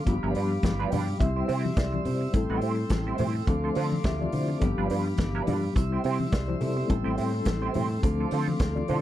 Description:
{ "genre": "disco", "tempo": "105 BPM", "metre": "4/4", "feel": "swing 56% on 16ths", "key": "A minor", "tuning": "A4 = 439 Hz", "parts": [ { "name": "mellow reed electric piano", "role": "accompaniment", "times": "0.0-9.0 s", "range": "F3 to G5", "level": "-30 LUFS", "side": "left 4 dB", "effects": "fast tremolo" }, { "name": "mellow tonewheel organ", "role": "sustained chords", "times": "0.0-9.0 s", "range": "G4 to E6", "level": "-36 LUFS", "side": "right 1 dB", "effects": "slow rotary speaker" }, { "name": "semi-hollow electric guitar", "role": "accompaniment", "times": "0.1-9.0 s", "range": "G3 to C5", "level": "-32 LUFS", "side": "right 10 dB", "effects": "wah, harmonic tremolo" }, { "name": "fingered electric bass", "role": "bass", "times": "0.1-9.0 s", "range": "G1 to D3", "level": "-30 LUFS", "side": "equal", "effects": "none" }, { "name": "vintage drum kit", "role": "drums", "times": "0.1-9.0 s", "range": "hi-hat, kick drum, snare drum", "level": "-29 LUFS", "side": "equal", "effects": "none" }, { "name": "congas", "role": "percussion", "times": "0.3-9.0 s", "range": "none", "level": "-35 LUFS", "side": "left 4 dB", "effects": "none" } ], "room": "little or no reverb", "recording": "none", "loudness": "-24 LUFS", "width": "side -13 dB against mid", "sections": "0.0-9.0 A section", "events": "reed electric piano fill 0.6-2.3", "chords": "0.1 G7; 1.2 C; 2.3 Am7; 3.5 Dm7; 4.6 G7; 5.8 C; 6.9 Am7; 8.0 Dm7" }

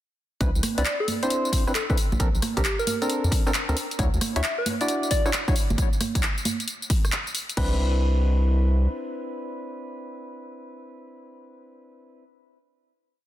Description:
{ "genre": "UK garage, two-step garage", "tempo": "134 BPM", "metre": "4/4", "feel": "swing 66% on 16ths", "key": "C lydian", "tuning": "A4 = 439 Hz", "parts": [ { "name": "percussive organ stab", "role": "stabs", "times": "0.4-12.2 s", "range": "C4 to D5", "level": "-30 LUFS", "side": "equal", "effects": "chorus, ping-pong delay" }, { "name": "saturated sub bass", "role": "bass", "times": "0.4-8.9 s", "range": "G1 to F2", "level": "-22 LUFS", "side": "equal", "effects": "sidechain pumping" }, { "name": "electronic kick drum", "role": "drums", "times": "0.4-7.7 s", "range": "none", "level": "-24 LUFS", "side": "equal", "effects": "overdrive" }, { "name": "garage drum kit", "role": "drums", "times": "0.4-7.7 s", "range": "congas, crash cymbal, handclaps, hi-hat, rim click, tambourine", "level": "-28 LUFS", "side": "right 1 dB", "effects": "none" }, { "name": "soft struck synth lead", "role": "melody", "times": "0.8-5.3 s", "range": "G4 to E5", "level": "-31 LUFS", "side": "left 1 dB", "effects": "chorus, ping-pong delay" } ], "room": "light reverb", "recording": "dense, heavily limited modern master", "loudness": "-22 LUFS", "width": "side -13 dB against mid", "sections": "0.4-7.6 drop; 7.6-11.2 final chord", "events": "drop 0.4-7.6", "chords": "0.4 Cmaj9; 2.0 Bbmaj9; 4.0 Dmaj9; 5.6 N.C.; 7.6 Cmaj9" }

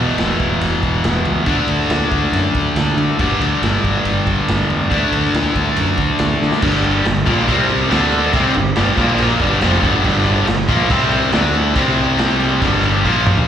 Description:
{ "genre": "classic rock", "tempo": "140 BPM", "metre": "4/4", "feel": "straight", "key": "unclear", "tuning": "A4 = 440 Hz", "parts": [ { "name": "distorted electric guitar", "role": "riff", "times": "0.0-13.5 s", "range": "E2 to D4", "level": "-16 LUFS", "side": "left 1 dB", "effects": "distortion" }, { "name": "growling fingered electric bass", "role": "bass", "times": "0.0-13.5 s", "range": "E1 to D3", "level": "-21 LUFS", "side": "equal", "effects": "overdrive" }, { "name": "raw garage drum kit", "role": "drums", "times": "0.1-13.5 s", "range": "crash cymbal, kick drum, ride cymbal, snare drum, toms", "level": "-20 LUFS", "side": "right 1 dB", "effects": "none" } ], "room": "light reverb, small room ambience", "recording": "live gig heard through the venue's PA, recital hall reverb", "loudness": "-13 LUFS", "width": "side -9 dB against mid", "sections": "0.0-6.6 A section; 6.6-13.5 B section", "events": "drum fill 6.4, 13.0-13.5", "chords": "0.0 E5; 1.5 D5; 3.2 G5; 4.9 D5; 6.6 G5; 7.5 C5; 7.9 D5; 8.3 G5; 9.0 Bb5; 9.4 G5; 10.9 C5; 11.3 D5; 11.8 C5; 12.6 G5; 13.0 Bb5" }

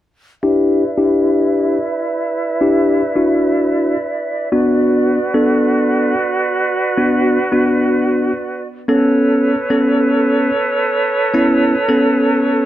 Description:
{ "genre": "pop", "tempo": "110 BPM", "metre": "4/4", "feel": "straight", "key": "E dorian", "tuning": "A4 = 440 Hz", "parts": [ { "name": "bell-like tine electric piano", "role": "accompaniment", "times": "0.4-12.7 s", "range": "B3 to A4", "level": "-14 LUFS", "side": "left 1 dB", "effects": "low-pass filter" }, { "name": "bright small flute group", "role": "sustained chords", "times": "0.4-12.7 s", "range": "E4 to E5", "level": "-18 LUFS", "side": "right 2 dB", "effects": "low-pass filter" } ], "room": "moderate plate reverb, RT60 2.7 s", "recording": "none", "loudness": "-13 LUFS", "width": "side -13 dB against mid", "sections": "0.4-12.7 A section", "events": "filter sweep 0.4-12.7", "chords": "0.4 Em7; 4.5 Bm; 8.9 Aadd9" }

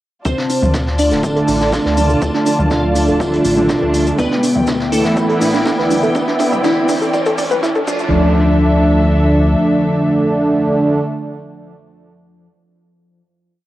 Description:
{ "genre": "melodic techno", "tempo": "122 BPM", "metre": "4/4", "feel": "straight", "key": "D dorian", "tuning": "A4 = 440 Hz", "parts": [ { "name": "soft octave-layered synth lead", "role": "melody", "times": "0.2-11.0 s", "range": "E3 to F4", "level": "-20 LUFS", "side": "left 1 dB", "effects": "chorus, sidechain pumping, cassette tape, tape echo" }, { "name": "glassy wavetable pluck", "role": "second line", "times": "0.2-11.0 s", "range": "E4 to F5", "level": "-23 LUFS", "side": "equal", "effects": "chorus, sidechain pumping, cassette tape, tape echo" }, { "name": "round analog bass", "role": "bass", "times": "0.2-9.6 s", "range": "D1 to D2", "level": "-20 LUFS", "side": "equal", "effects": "tube saturation, sidechain pumping" }, { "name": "vintage brush drum kit", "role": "drums", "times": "0.2-7.7 s", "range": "hi-hat, snare drum, tambourine", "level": "-29 LUFS", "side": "equal", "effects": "sidechain pumping on hats, high-pass filter on hats, high-pass filter on snare, sidechain pumping on perc, high-pass filter on perc, high-pass filter on room" }, { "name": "muted chamber string section", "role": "sustained chords", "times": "0.3-11.0 s", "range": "D4 to A5", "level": "-22 LUFS", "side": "left 1 dB", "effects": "sidechain pumping, cassette tape" }, { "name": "warbly dusty pluck", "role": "arpeggios", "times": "0.3-8.3 s", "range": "D4 to F5", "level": "-21 LUFS", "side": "right 2 dB", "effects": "chorus, sidechain pumping, cassette tape, tape echo" }, { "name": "electronic kick drum", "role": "drums", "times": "0.3-8.0 s", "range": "none", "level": "-25 LUFS", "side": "equal", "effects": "none" }, { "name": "maracas", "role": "percussion", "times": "0.3-8.1 s", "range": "none", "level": "-32 LUFS", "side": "left 2 dB", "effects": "none" }, { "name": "riser", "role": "sound effects", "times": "2.3-8.1 s", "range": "none", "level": "-25 LUFS", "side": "right 1 dB", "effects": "none" }, { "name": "techno drum kit", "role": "drums", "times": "0.5-7.6 s", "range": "hi-hat, toms", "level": "-25 LUFS", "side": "equal", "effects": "none" }, { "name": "brassy analog pad", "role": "stabs", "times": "1.0-11.0 s", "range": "D3 to E4", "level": "-16 LUFS", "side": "right 2 dB", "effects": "chorus, cassette tape, sidechain pumping, tape echo" } ], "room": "light reverb", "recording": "home recording on cassette, high-pass filter", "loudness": "-12 LUFS", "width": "side -14 dB against mid", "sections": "0.3-8.1 build; 8.1-12.1 final hit", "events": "build-up 0.3-8.1; filter sweep on synth arpeggio sound 0.3-8.1; filter sweep on soft synth lead 0.3-8.1; riser 2.3-8.1; drum fill 4.2-8.1", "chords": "0.3 Dm; 4.2 Em7/D; 7.9 Dm" }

